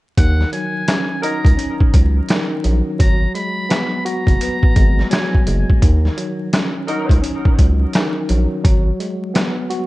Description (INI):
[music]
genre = hip hop, boom-bap hip-hop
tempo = 85 BPM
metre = 4/4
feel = swing 63% on 16ths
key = Eb minor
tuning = A4 = 440 Hz
[part]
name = trumpet with metal mute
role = melody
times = 0.2-5.4 s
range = Gb5 to Cb6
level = -26 LUFS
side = equal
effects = high-pass filter, low-pass filter, analog delay
[part]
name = tine electric piano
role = accompaniment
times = 0.2-9.9 s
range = Eb3 to Gb4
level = -22 LUFS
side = equal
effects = overdrive, fast stereo tremolo, high-pass filter, low-pass filter
[part]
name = round analog bass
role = bass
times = 0.2-8.9 s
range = Gb1 to Eb2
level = -16 LUFS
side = equal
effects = none
[part]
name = trip hop sampler-style drum kit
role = drums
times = 0.2-9.9 s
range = hi-hat, kick drum, rim click, snare drum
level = -16 LUFS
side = equal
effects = none
[part]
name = mellow horn section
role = stabs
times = 1.2-1.4, 6.9-7.2 s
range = Gb3 to Bb4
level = -28 LUFS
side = right 2 dB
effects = high-pass filter, low-pass filter, analog delay
[sound]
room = little or no reverb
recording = dark, warm production, vinyl crackle, nothing above 10.8 kHz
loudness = -14 LUFS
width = side -19 dB against mid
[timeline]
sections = 0.2-9.9 A section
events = none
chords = 0.2 Ebm7; 3.0 Abm7; 5.8 Ebm7; 8.6 Abm7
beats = | 0.18 0.88 1.59 2.29 | 3.00 3.71 4.41 5.12 | 5.82 6.53 7.24 7.94 | 8.65 9.35